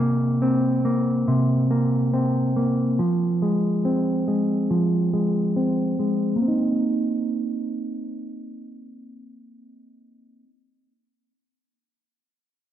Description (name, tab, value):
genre	hip hop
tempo	140 BPM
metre	4/4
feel	half-time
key	C minor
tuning	A4 = 438 Hz
part	mellow electric guitar	arpeggios	0.0-10.6 s	C3 to Eb4	-20 LUFS	equal	low-pass filter, digital delay
room	moderate lush hall reverb, RT60 1.8 s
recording	none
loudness	-20 LUFS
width	side -10 dB against mid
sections	0.0-6.4 A section; 6.4-9.8 B section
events	filter sweep on clean electric guitar 0.0-6.4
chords	0.0 Bbsus2/C; 3.0 Fm; 6.4 Cm7